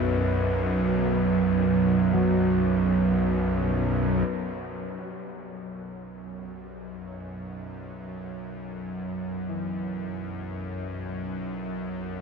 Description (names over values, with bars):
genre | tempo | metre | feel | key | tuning
dark ambient drone | free time | none | none | unclear | A4 = 439 Hz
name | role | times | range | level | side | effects
dark analog pad | sustained chords | 0.0-4.3 s | B3 to B4 | -33 LUFS | left 1 dB | chorus
dark baby grand piano | arpeggios | 0.0-12.2 s | E3 to F#3 | -36 LUFS | left 4 dB | tape echo
bowed-like drone | drone | 0.0-12.2 s | B1 to F#2 | -26 LUFS | right 2 dB | built-in reverb
room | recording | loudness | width
moderate huge ambient reverb, RT60 8.3 s | none | -24 LUFS | side -5 dB against mid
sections
0.0-4.3 A section; 4.3-12.2 B section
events
fade-in on synth drone 4.3-12.2; fade-in on grand piano 4.3-12.2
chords
0.0 B5